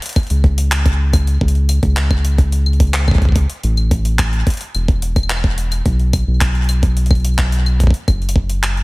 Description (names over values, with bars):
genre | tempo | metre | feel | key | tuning
IDM | 108 BPM | 4/4 | straight | A major | A4 = 440 Hz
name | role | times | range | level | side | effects
jungle sampler-style drum kit | drums | 0.0-8.8 s | claves, handclaps, hi-hat | -23 LUFS | left 1 dB | studio reverb, digital delay
electronic kick drum | drums | 0.2-8.5 s | none | -14 LUFS | equal | studio reverb
round analog bass | bass | 0.3-8.8 s | E1 to C#2 | -15 LUFS | equal | tube saturation
room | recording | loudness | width
digital ambience | none | -13 LUFS | side -24 dB against mid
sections
0.0-8.8 A section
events
none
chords
none